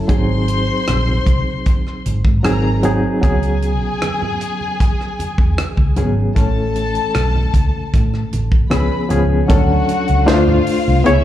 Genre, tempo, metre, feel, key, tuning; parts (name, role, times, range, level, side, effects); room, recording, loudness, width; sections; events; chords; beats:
lush 1970s-style soul; 76 BPM; 4/4; straight; A4 = 440 Hz
barky reed electric piano; accompaniment; 0.0-11.2 s; E3 to C#5; -19 LUFS; left 1 dB; overdrive, fast tremolo, slapback echo
warm studio string section; second line; 0.1-11.2 s; E4 to B#5; -23 LUFS; left 3 dB; slapback echo
vintage muted fingered electric bass; bass; 0.1-11.2 s; G#1 to A2; -17 LUFS; equal
tight funk drum kit; drums; 0.1-11.2 s; hi-hat, kick drum, rim click, snare drum; -18 LUFS; equal
congas; percussion; 0.1-10.7 s; -27 LUFS; right 3 dB
small room ambience; live gig heard through the venue's PA, club reverb; -14 LUFS; side -12 dB against mid
0.0-9.5 A section; 9.5-11.2 B section
0.1 G#7; 3.2 C#7sus4; 6.4 A; 8.7 C#7; 9.5 Dmaj7; 10.3 Dm7
| 0.09 0.88 1.66 2.44 | 3.23 4.01 4.80 5.58 | 6.37 7.15 7.93 8.72 | 9.50 10.28 11.06